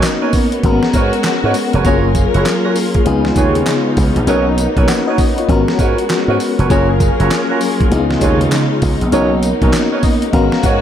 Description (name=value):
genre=R&B, new jack swing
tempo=99 BPM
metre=4/4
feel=swing 63% on 16ths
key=unclear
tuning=A4 = 440 Hz
part: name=FM electric piano with tremolo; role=accompaniment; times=0.0-10.8 s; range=A#3 to F#5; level=-17 LUFS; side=left 5 dB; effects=none
part: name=dark studio string section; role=sustained chords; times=0.0-10.8 s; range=C#3 to A#4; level=-18 LUFS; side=equal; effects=none
part: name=mellow horn section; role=stabs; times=0.0-10.8 s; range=C#4 to C#5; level=-21 LUFS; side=right 4 dB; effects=ping-pong delay
part: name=dusty soul sampler-style drum kit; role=drums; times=0.0-10.8 s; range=handclaps, hi-hat, kick drum, snare drum, tambourine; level=-17 LUFS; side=right 1 dB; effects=none
part: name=slap bass with an envelope filter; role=bass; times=0.6-10.8 s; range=E#1 to G#2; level=-16 LUFS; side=right 1 dB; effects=none
room=moderate plate reverb, RT60 2.7 s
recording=dreamy mix soaked in reverb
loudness=-12 LUFS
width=side -10 dB against mid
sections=0.0-10.8 A section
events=FM electric piano fill 9.7-10.8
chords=0.0 Bmaj9; 0.6 G#m11; 1.8 F#maj7; 3.1 C#7; 4.3 Bmaj9; 5.5 G#m11; 6.7 F#maj7; 7.9 C#7; 9.1 Bmaj9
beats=0.03 0.64 1.24 | 1.85 2.45 3.06 3.67 | 4.27 4.88 5.48 6.09 | 6.70 7.30 7.91 8.51 | 9.12 9.73 10.33